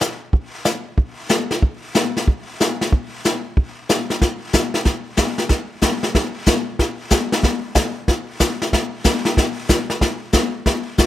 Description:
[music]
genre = jazz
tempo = 186 BPM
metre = 4/4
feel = swing 64% on 8ths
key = none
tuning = none
[part]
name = jazz brush drum kit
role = drums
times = 0.0-11.1 s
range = brushed snare drum, hi-hat, kick drum, snare drum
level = -17 LUFS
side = equal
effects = none
[sound]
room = light reverb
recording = none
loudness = -17 LUFS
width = side -13 dB against mid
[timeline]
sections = 0.0-4.2 A section; 4.2-11.1 B section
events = none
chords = none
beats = 0.01 | 0.34 0.66 0.98 1.31 | 1.63 1.95 2.27 2.60 | 2.92 3.24 3.57 3.89 | 4.21 4.54 4.86 5.18 | 5.50 5.83 6.15 6.47 | 6.79 7.12 7.44 7.76 | 8.08 8.40 8.73 9.05 | 9.37 9.70 10.02 10.34 | 10.66 10.98

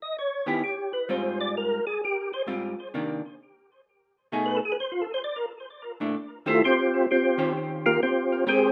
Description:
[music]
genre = jazz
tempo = 130 BPM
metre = 4/4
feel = swing 65% on 8ths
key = unclear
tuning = A4 = 443 Hz
[part]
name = percussive tonewheel organ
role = melody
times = 0.0-8.7 s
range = A3 to Eb5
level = -26 LUFS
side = equal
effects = slow rotary speaker, chorus vibrato, tape echo
[part]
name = vintage hollow-body jazz guitar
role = accompaniment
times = 0.5-8.7 s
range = Ab2 to C5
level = -32 LUFS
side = equal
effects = none
[sound]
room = wet studio reverb, RT60 0.6 s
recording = rough home demo mix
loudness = -27 LUFS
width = mono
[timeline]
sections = 0.0-8.7 A section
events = tonewheel organ solo 0.0-8.7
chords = 0.2 Ebaug7; 1.1 Ab6; 2.9 Cm9; 3.9 B6; 4.8 Bbmaj9#11; 6.6 Eb13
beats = 0.17 0.63 | 1.09 1.55 2.01 2.47 | 2.93 3.39 3.85 4.31 | 4.77 5.24 5.70 6.16 | 6.62 7.08 7.54 8.00 | 8.46

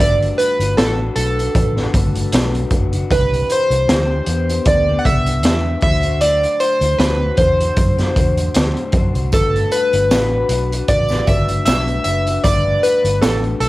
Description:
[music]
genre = indie pop, bedroom pop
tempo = 77 BPM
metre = 4/4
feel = swing 55% on 16ths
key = G major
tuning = A4 = 440 Hz
[part]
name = chorused retro synth keys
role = melody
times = 0.0-13.7 s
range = A4 to F#5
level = -18 LUFS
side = equal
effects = wide subtle chorus, cassette tape
[part]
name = electric guitar through a small old amp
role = accompaniment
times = 0.0-13.7 s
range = C3 to C5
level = -26 LUFS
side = left 6 dB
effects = lush chorus, vibrato effect
[part]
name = vintage muted fingered electric bass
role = bass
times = 0.0-13.7 s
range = F#1 to F#2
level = -19 LUFS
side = equal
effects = none
[part]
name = raw garage drum kit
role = drums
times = 0.0-13.7 s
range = hi-hat, kick drum, snare drum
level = -18 LUFS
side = equal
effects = none
[part]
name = tambourine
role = percussion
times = 9.3-13.4 s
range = none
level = -36 LUFS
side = right 7 dB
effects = none
[sound]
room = light reverb, small room ambience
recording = home recording on cassette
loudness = -14 LUFS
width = side -18 dB against mid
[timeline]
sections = 0.0-13.7 A section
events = none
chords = 0.0 Gmaj9; 3.1 Cmaj9; 5.8 D7; 9.3 Gmaj9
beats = 0.77 1.55 2.33 | 3.10 3.88 4.66 5.44 | 6.22 6.99 7.77 8.55 | 9.33 10.11 10.88 11.66 | 12.44 13.22

